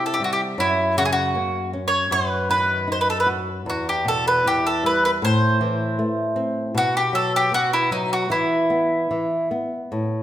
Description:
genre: fado-style ballad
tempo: 78 BPM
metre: 2/4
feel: rubato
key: E harmonic minor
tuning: A4 = 441 Hz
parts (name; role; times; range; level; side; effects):
- mandolin; melody; 0.0-9.5 s; D#4 to C#5; -20 LUFS; equal; none
- nylon-string guitar; accompaniment; 0.0-10.2 s; E2 to F#4; -24 LUFS; left 1 dB; none
room: wet recital hall reverb, RT60 1.5 s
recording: minimal, uncompressed stereo recording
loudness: -19 LUFS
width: side -12 dB against mid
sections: 0.0-9.9 A section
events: none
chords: 0.0 C; 0.6 F#; 2.1 B/F#; 3.7 Em; 5.2 Am; 6.7 B5; 8.3 E5

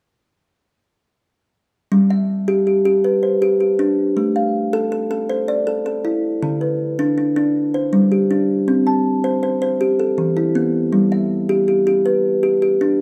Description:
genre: southern african traditional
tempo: 106 BPM (dotted quarters)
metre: 12/8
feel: straight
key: G mixolydian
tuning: A4 = 440 Hz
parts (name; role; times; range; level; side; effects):
- kalimba; arpeggios; 1.9-13.0 s; D3 to A5; -18 LUFS; equal; none
room: wet recital hall reverb, RT60 1.4 s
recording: dark, warm production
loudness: -18 LUFS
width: mono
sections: 1.9-13.0 A section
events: none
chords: 1.9 G; 4.2 Am; 6.4 Bm/D; 7.5 G5; 8.7 Am/C; 9.8 Em; 10.9 G

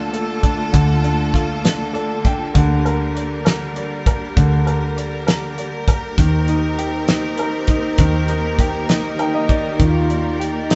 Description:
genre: six-eight pop ballad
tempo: 66 BPM (dotted quarters)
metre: 6/8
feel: straight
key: unclear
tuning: A4 = 439 Hz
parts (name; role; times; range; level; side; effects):
- bright upright piano; accompaniment; 0.0-10.8 s; D3 to G5; -25 LUFS; equal; none
- clear studio string section; sustained chords; 0.0-10.8 s; D3 to D5; -26 LUFS; equal; none
- vintage muted fingered electric bass; bass; 0.0-10.8 s; D2 to Eb2; -21 LUFS; equal; none
- damped 70s drum kit; drums; 0.1-10.8 s; hi-hat, kick drum, snare drum; -20 LUFS; equal; none
- dark French horn section; second line; 9.8-10.8 s; Eb4 to F4; -26 LUFS; equal; none
room: moderate stone room reverb, RT60 1.3 s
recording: band playing live in one room, nothing above 7.9 kHz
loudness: -18 LUFS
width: mono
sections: 0.0-10.8 A section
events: upright piano fill 1.6-2.6, 8.9-9.8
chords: 0.0 Bbmaj7/D; 2.6 Gm/D; 6.2 Cm7/Eb; 9.8 Ebmaj7

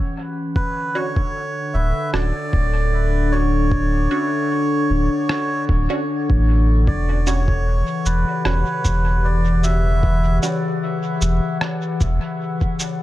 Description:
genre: ambient dub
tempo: 76 BPM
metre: 4/4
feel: swing 54% on 16ths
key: E dorian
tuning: A4 = 440 Hz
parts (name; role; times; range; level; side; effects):
- warbly tape-like pad; sustained chords; 0.0-13.0 s; C#3 to F#5; -23 LUFS; left 2 dB; chorus, built-in reverb
- melodica; melody; 0.6-10.4 s; B4 to E5; -25 LUFS; right 1 dB; dub echo
- electronic kick drum; drums; 0.6-12.8 s; none; -21 LUFS; equal; studio ambience
- filtered dub chord stab; stabs; 1.0-10.7 s; G3 to F#4; -31 LUFS; right 3 dB; phaser, dub echo
- soft dub sub bass; bass; 1.7-12.2 s; D1 to A1; -18 LUFS; equal; tube saturation
- electronic rim click and shaker; drums; 2.1-13.0 s; none; -29 LUFS; equal; studio ambience, dub echo
room: moderate spring reverb, RT60 2.3 s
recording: echo-heavy mix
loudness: -17 LUFS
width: side -15 dB against mid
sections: 0.0-13.0 A section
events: none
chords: 0.0 Em69; 0.6 Dmaj7; 6.9 Em69

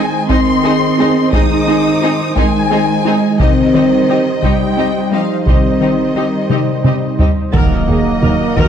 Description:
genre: cinematic, hybrid orchestral and electronic film score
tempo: 58 BPM (dotted quarters)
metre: 6/8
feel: straight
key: unclear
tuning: A4 = 440 Hz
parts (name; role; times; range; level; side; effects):
- warm symphonic violin section; melody; 0.0-8.7 s; Eb5 to Eb6; -21 LUFS; left 4 dB; none
- warm symphonic violin section; second line; 0.0-8.7 s; G4 to Eb5; -24 LUFS; left 3 dB; none
- clear chamber viola section; accompaniment; 0.0-8.7 s; C4 to Bb4; -23 LUFS; right 1 dB; none
- mellow French horn section; sustained chords; 0.0-8.3 s; Eb3 to Eb4; -19 LUFS; left 3 dB; none
- warm analog pad; sustained chords; 0.0-8.7 s; Eb3 to Eb5; -20 LUFS; right 1 dB; chorus
- mallet-like synth pluck; arpeggios; 0.0-8.7 s; C3 to Ab4; -22 LUFS; left 1 dB; chorus, phaser
- dark symphonic cello section; bass; 0.0-8.7 s; Eb3 to Eb4; -18 LUFS; right 3 dB; none
- felt-muted upright piano; texture; 0.0-8.7 s; Ab4 to Gb5; -26 LUFS; left 1 dB; none
- solo taiko drums; drums; 0.3-8.7 s; none; -16 LUFS; equal; none
- mellow duduk; melody; 7.5-8.7 s; Bb3 to Gb4; -18 LUFS; right 5 dB; none
- warm symphonic double bass section; bass; 7.5-8.6 s; Eb2; -17 LUFS; right 2 dB; none
- impact; sound effects; 7.5-8.7 s; none; -20 LUFS; equal; none
room: wet scoring stage reverb, RT60 1.5 s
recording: dark, warm production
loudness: -11 LUFS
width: side -8 dB against mid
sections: 0.0-7.5 A section; 7.5-8.7 B section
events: drum fill 6.5-7.5; impact 7.5-8.7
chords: 0.0 Ab/Eb; 3.4 Cm; 7.5 Ebm

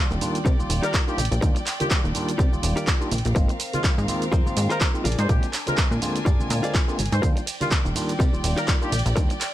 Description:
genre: filtered disco house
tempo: 124 BPM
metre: 4/4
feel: swing 56% on 16ths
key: Eb major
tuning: A4 = 439 Hz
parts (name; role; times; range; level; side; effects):
- dark horn section; melody; 0.0-9.0 s; F4 to C5; -32 LUFS; left 1 dB; sidechain pumping, ping-pong delay
- overdriven tine electric piano; accompaniment; 0.0-9.3 s; D3 to D5; -29 LUFS; equal; phaser, sidechain pumping
- clear studio violin section; sustained chords; 0.0-9.5 s; C4 to Ab5; -34 LUFS; equal; sidechain pumping
- plucky analog bass; bass; 0.1-9.3 s; Eb1 to C3; -24 LUFS; equal; sidechain pumping
- punchy analog drum machine; drums; 0.1-9.5 s; handclaps, hi-hat, ride cymbal, shaker; -28 LUFS; right 1 dB; sidechain pumping on hats, sidechain pumping on perc, sidechain pumping on cymbals
- maracas and congas; percussion; 0.1-9.4 s; none; -35 LUFS; right 3 dB; sidechain pumping on perc
- direct-recorded clean electric guitar; riff; 0.4-9.4 s; Eb4 to D5; -32 LUFS; left 2 dB; sidechain pumping
- electronic kick drum; drums; 0.5-9.3 s; none; -21 LUFS; equal; none
room: digital ambience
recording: none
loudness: -20 LUFS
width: side -14 dB against mid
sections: 0.0-9.5 A section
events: none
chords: 0.0 Ebmaj7; 3.4 Ab69; 5.1 Bb7; 7.2 Ebmaj7

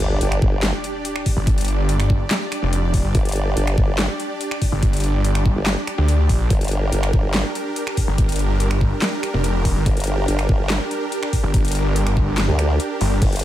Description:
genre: heavy wobble dubstep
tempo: 143 BPM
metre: 4/4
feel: half-time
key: G minor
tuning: A4 = 440 Hz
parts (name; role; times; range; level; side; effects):
- supersaw pad; sustained chords; 0.0-13.4 s; D4 to D5; -26 LUFS; right 2 dB; sidechain pumping
- formant-sweep wobble bass; bass; 0.0-13.4 s; G1 to D2; -20 LUFS; equal; chorus, overdrive
- dubstep drum kit; drums; 0.0-13.4 s; crash cymbal, finger snaps, handclaps, hi-hat, snare drum; -25 LUFS; left 1 dB; none
- sub drop; sound effects; 0.0-1.5 s; none; -33 LUFS; equal; none
- electronic kick drum; drums; 0.4-13.3 s; none; -19 LUFS; equal; overdrive
- snarling distorted saw bass; bass; 1.4-13.2 s; F1 to D2; -19 LUFS; equal; distortion, overdrive
room: little or no reverb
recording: none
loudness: -17 LUFS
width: side -13 dB against mid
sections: 0.0-13.4 A section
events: impact 0.0-1.5; kick drops out 12.4-13.2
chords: 0.0 G5

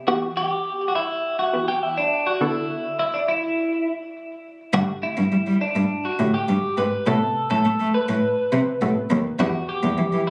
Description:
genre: pop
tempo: 103 BPM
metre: 4/4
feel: straight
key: A dorian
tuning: A4 = 440 Hz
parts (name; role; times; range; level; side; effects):
- unison pluck; accompaniment; 0.0-10.3 s; C3 to A4; -30 LUFS; equal; none
- twelve-string electric guitar; melody; 0.1-10.3 s; D4 to B4; -26 LUFS; equal; delay
- warm cello; bass; 4.7-10.2 s; D#2 to A3; -24 LUFS; equal; none
room: moderate lush hall reverb, RT60 2.4 s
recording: recorded on a phone in the room, club reverb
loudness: -22 LUFS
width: mono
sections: 0.0-10.3 A section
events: none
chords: 0.1 Em; 2.4 Bm7; 4.7 Gsus2; 7.1 Amadd9; 9.4 Em

